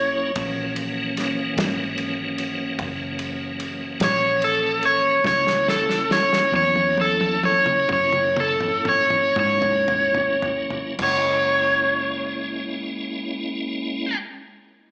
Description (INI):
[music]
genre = slow blues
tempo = 35-49 BPM (dotted quarters)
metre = 12/8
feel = straight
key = F# mixolydian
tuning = A4 = 439 Hz
[part]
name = crunchy overdriven guitar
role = melody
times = 0.0-14.2 s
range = A4 to C#5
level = -18 LUFS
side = equal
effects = spring reverb, slapback echo
[part]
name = tonewheel organ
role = sustained chords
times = 0.0-14.2 s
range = E3 to E4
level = -27 LUFS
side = equal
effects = slow rotary speaker, overdrive, chorus vibrato
[part]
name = vintage muted fingered electric bass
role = bass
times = 0.0-14.1 s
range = F#1 to G#2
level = -33 LUFS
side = equal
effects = none
[part]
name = warm soul drum kit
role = drums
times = 0.4-11.3 s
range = crash cymbal, kick drum, ride cymbal, snare drum, toms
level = -29 LUFS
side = equal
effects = none
[sound]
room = light reverb, small room ambience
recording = live gig heard through the venue's PA, club reverb, small speaker sound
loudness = -19 LUFS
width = side -36 dB against mid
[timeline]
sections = 0.0-11.0 A section; 11.0-14.9 B section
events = overdriven electric guitar solo 0.0-11.0; slowing down 3.6-11.0; drum fill 5.2-11.0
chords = 0.0 F#9